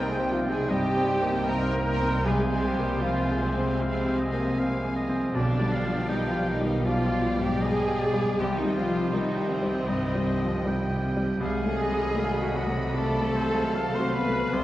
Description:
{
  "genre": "classical, romantic movement for piano and orchestra",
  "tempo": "78 BPM",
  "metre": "4/4",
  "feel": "rubato",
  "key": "C minor",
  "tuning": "A4 = 439 Hz",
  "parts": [
    { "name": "clear concert grand piano", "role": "melody", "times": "0.0-14.6 s", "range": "B1 to C5", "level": "-28 LUFS", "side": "left 1 dB", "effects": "none" },
    { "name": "rich studio violin section", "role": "melody", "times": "0.0-14.6 s", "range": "Gb5 to B5", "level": "-42 LUFS", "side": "equal", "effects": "none" },
    { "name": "clear oboe", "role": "second line", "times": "0.0-14.6 s", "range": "C5 to G5", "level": "-36 LUFS", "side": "right 1 dB", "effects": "none" },
    { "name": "rich studio violin section", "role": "second line", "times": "0.0-14.6 s", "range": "C5 to G5", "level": "-41 LUFS", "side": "left 1 dB", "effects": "none" },
    { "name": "silver concert flute", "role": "second line", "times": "0.0-14.6 s", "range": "C5 to C6", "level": "-34 LUFS", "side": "equal", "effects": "none" },
    { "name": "bright studio viola section", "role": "accompaniment", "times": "0.0-14.6 s", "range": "C4 to C5", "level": "-32 LUFS", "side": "right 1 dB", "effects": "none" },
    { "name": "mellow French horn section", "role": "sustained chords", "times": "0.0-14.6 s", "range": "C3 to C4", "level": "-33 LUFS", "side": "left 2 dB", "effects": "none" },
    { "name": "warm trombone section", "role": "sustained chords", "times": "0.0-14.6 s", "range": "Eb3 to Eb4", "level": "-36 LUFS", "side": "right 2 dB", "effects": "none" },
    { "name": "dark studio double bass section", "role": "bass", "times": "0.0-14.6 s", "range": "B1 to C2", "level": "-32 LUFS", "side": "right 1 dB", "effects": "none" },
    { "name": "warm studio cello section", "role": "bass", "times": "0.0-14.6 s", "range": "B2 to C3", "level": "-34 LUFS", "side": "right 1 dB", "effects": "none" }
  ],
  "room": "wet concert hall reverb, RT60 1.9 s",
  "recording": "worn, warbling old tape, cassette tape, warbly pitch drift",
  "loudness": "-24 LUFS",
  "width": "side -14 dB against mid",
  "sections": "0.0-14.6 A section",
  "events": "none",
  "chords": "0.0 Cm; 2.3 Fm/C; 5.3 G7/B; 8.4 Cm; 11.4 Cdim7"
}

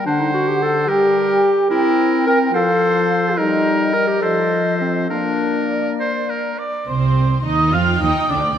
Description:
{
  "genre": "quick classical-period movement for symphony orchestra",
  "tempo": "67-74 BPM (dotted quarters)",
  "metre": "6/8",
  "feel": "rubato",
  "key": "Bb major",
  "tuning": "A4 = 442 Hz",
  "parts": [
    { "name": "bright oboe", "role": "second line", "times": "0.0-6.9 s", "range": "Bb4 to D5", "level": "-23 LUFS", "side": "right 2 dB", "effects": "none" },
    { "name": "mellow hollow small flute group", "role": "second line", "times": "0.0-8.6 s", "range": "D5 to F6", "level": "-22 LUFS", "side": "right 2 dB", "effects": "none" },
    { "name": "warm French horn section", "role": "sustained chords", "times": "0.0-6.6 s", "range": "D3 to C4", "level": "-22 LUFS", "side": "left 4 dB", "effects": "none" },
    { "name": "mellow clarinet", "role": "second line", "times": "0.1-6.0 s", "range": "C4 to Bb4", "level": "-18 LUFS", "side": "equal", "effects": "none" },
    { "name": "warm chamber violin section", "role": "melody", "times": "6.9-8.6 s", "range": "C5 to F5", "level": "-28 LUFS", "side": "left 2 dB", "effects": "none" },
    { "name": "rich studio viola section", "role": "accompaniment", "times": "6.9-8.4 s", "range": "C4 to F4", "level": "-23 LUFS", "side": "equal", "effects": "none" },
    { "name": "warm chamber cello section", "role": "bass", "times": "6.9-8.6 s", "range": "C3 to F3", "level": "-20 LUFS", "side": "right 4 dB", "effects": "none" },
    { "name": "warm chamber double bass section", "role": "bass", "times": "6.9-8.6 s", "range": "C2 to F2", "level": "-22 LUFS", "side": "right 3 dB", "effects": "none" },
    { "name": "warm chamber violin section", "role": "second line", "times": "7.7-8.5 s", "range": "G5", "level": "-26 LUFS", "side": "left 1 dB", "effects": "none" }
  ],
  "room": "wet concert hall reverb, RT60 2.4 s",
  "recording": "none",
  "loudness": "-15 LUFS",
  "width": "side -9 dB against mid",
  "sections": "0.0-6.9 A section; 6.9-8.6 B section",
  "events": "none",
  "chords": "0.1 D7; 0.9 Gm; 1.7 C7; 2.5 F; 3.4 Eb/G; 4.2 F7; 5.1 Bb; 6.9 Cm"
}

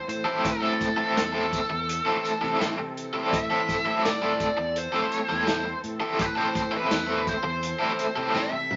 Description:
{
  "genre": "psychedelic rock",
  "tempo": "84 BPM",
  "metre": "4/4",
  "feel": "straight",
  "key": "A minor",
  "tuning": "A4 = 440 Hz",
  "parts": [
    { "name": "smooth overdriven lead guitar", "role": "melody", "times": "0.0-8.8 s", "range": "A4 to E5", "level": "-31 LUFS", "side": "equal", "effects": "wah" },
    { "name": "rich symphonic string section", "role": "sustained chords", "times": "0.0-8.8 s", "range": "E3 to A4", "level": "-42 LUFS", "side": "equal", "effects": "none" },
    { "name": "growling fingered electric bass", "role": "bass", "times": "0.1-8.8 s", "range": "E2 to C3", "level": "-38 LUFS", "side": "equal", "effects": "overdrive" },
    { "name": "vintage drum kit", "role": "drums", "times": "0.1-8.8 s", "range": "hi-hat, kick drum, snare drum, toms", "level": "-34 LUFS", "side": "equal", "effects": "none" },
    { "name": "tambourine", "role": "percussion", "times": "0.1-8.8 s", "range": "none", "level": "-45 LUFS", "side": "equal", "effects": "none" },
    { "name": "overdriven electric guitar", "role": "riff", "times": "0.2-8.6 s", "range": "A3 to A4", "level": "-28 LUFS", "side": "equal", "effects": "tremolo" }
  ],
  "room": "wet studio reverb, RT60 0.6 s",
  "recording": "nothing above 7.5 kHz",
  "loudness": "-26 LUFS",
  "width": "mono",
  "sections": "0.0-8.8 A section",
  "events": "drum fill 8.4-8.8",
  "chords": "0.0 Am"
}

